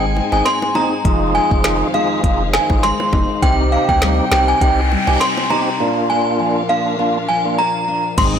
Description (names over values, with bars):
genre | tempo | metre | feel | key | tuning
dancehall | 101 BPM | 4/4 | swing 56% on 16ths | unclear | A4 = 439 Hz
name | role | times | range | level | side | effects
tonewheel organ | accompaniment | 0.0-8.4 s | Bb3 to Ab4 | -20 LUFS | right 2 dB | overdrive, fast rotary speaker
dark studio string section | sustained chords | 0.0-8.4 s | C4 to Ab5 | -27 LUFS | left 1 dB | sidechain pumping
nylon-string guitar | arpeggios | 0.0-8.4 s | F2 to Eb4 | -24 LUFS | left 7 dB | none
punchy sub bass | bass | 0.0-8.4 s | F1 to D2 | -19 LUFS | equal | none
bongos | percussion | 0.2-5.7 s | none | -28 LUFS | right 2 dB | none
synth chime | melody | 0.3-8.3 s | F5 to C6 | -18 LUFS | equal | ensemble chorus, ping-pong delay
afro-pop drum kit | drums | 0.5-8.3 s | crash cymbal, finger snaps, hi-hat, kick drum, snare drum | -19 LUFS | equal | none
noise sweep and impact | sound effects | 3.9-8.4 s | none | -27 LUFS | equal | none
room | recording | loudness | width
light reverb, digital ambience | blown-out, overdriven recording, overdrive | -14 LUFS | side -8 dB against mid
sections
0.0-8.2 A section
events
noise sweep 3.9-8.2; break 5.8-8.2; impact 8.2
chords
0.0 Ab; 1.1 Fm7; 3.4 Cm; 5.8 Bb